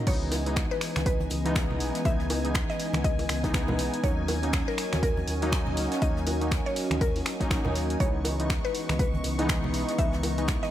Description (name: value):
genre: deep house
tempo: 121 BPM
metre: 4/4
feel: swing 59% on 16ths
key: C# dorian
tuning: A4 = 439 Hz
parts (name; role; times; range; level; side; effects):
- hollow soft pad; sustained chords; 0.0-10.7 s; E3 to D#5; -38 LUFS; equal; chorus, sidechain pumping
- warm analog keys; stabs; 0.0-10.7 s; E3 to D#4; -32 LUFS; equal; chorus, sidechain pumping, tape echo
- warbly tape-like pad; texture; 0.0-10.7 s; E3 to D#5; -37 LUFS; left 2 dB; chorus, built-in reverb, sidechain pumping
- mallet-like synth pluck; melody; 0.1-10.7 s; A#4 to E5; -35 LUFS; left 1 dB; chorus, tape echo
- sub bass with octave; bass; 0.1-10.6 s; A#1 to D#2; -32 LUFS; equal; sidechain pumping
- electronic kick drum; drums; 0.1-10.6 s; none; -28 LUFS; equal; none
- jazz brush drum kit; drums; 0.1-10.7 s; hi-hat, snare drum; -43 LUFS; left 2 dB; sidechain pumping on hats, high-pass filter on hats, high-pass filter on snare, high-pass filter on room
- punchy analog drum machine; drums; 0.1-10.6 s; crash cymbal, finger snaps, hi-hat; -34 LUFS; equal; none
- string machine, violins; texture; 0.1-10.7 s; G#5 to C#6; -41 LUFS; equal; ensemble chorus, sidechain pumping
- bongos and congas; percussion; 0.3-10.4 s; none; -34 LUFS; right 1 dB; none
room: light reverb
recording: none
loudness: -25 LUFS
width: side -12 dB against mid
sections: 0.0-10.7 A section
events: none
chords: 0.1 C#m9; 4.0 D#m7; 8.0 C#m9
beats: | 0.07 0.56 1.06 1.56 | 2.05 2.55 3.04 3.54 | 4.04 4.53 5.03 5.52 | 6.02 6.52 7.01 7.51 | 8.00 8.50 8.99 9.49 | 9.99 10.48